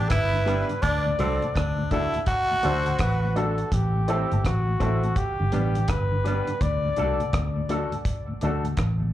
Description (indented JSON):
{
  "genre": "roots reggae",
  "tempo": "83 BPM",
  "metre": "4/4",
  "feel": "swing 63% on 16ths",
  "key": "unclear",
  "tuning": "A4 = 440 Hz",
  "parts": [
    { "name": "clear flugelhorn", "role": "melody", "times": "0.0-7.7 s", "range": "F#4 to D5", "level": "-30 LUFS", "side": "left 2 dB", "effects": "plate reverb, slapback echo, tape echo" },
    { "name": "raspy tenor saxophone", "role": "second line", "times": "0.0-3.3 s", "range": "C4 to F#4", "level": "-27 LUFS", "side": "right 1 dB", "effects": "plate reverb, slapback echo, tape echo" },
    { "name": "mellow tonewheel organ", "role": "accompaniment", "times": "0.0-9.1 s", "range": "D2 to D4", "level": "-34 LUFS", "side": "left 2 dB", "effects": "chorus vibrato, slow rotary speaker, plate reverb, slapback echo" },
    { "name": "vintage muted fingered electric bass", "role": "bass", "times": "0.0-9.1 s", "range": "G1 to D2", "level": "-25 LUFS", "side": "equal", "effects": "none" },
    { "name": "deep reggae drum kit", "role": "drums", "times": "0.1-9.0 s", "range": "hi-hat, kick drum, rim click", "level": "-27 LUFS", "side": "equal", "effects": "none" },
    { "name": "electric guitar with an envelope filter", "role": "accompaniment", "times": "0.5-8.7 s", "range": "G3 to A4", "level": "-34 LUFS", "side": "right 5 dB", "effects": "plate reverb, slapback echo, tape echo" },
    { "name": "warm baby grand piano", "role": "stabs", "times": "0.5-8.6 s", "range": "C4 to B4", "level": "-33 LUFS", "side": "left 4 dB", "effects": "tube saturation, plate reverb, slapback echo" }
  ],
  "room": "light reverb",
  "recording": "live gig heard through the venue's PA, cassette tape, club reverb",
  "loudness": "-22 LUFS",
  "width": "side -13 dB against mid",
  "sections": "0.0-9.1 A section",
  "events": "none",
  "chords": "0.0 G; 0.8 D; 3.7 Am; 5.2 G; 6.6 D"
}